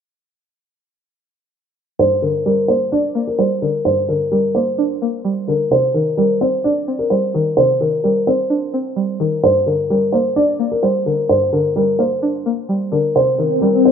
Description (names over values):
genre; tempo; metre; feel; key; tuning
hip hop; 129 BPM; 4/4; half-time; G minor; A4 = 440 Hz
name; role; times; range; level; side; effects
warm baby grand piano; melody; 2.0-13.9 s; Bb4 to D5; -16 LUFS; left 1 dB; none
string-like resonator pluck; accompaniment; 2.0-13.9 s; G2 to D4; -20 LUFS; right 2 dB; chorus
swell; sound effects; 13.4-13.9 s; none; -15 LUFS; left 5 dB; none
room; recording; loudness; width
light reverb, small room ambience; rough home demo mix, low-pass filter; -15 LUFS; side -7 dB against mid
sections
2.0-13.9 A section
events
filter sweep 2.0-13.9; swell 13.4-13.9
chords
2.0 Gm; 5.7 Cmadd9; 9.4 Gm; 13.2 Cm